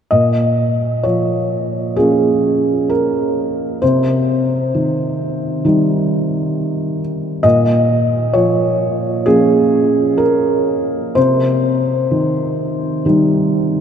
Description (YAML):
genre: neoclassical minimalist piano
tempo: 65 BPM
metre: 4/4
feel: uneven beats, rubato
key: Bb dorian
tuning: A4 = 440 Hz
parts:
  - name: felt-muted upright piano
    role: solo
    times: 0.1-13.8 s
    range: Bb2 to Eb5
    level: -13 LUFS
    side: equal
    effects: none
room: wet cathedral reverb, RT60 6.4 s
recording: in a vast, echoing space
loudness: -13 LUFS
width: side -8 dB against mid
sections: 0.1-13.8 A section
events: none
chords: 0.1 Bbm; 3.8 Cm; 7.4 Bbm; 11.2 Cm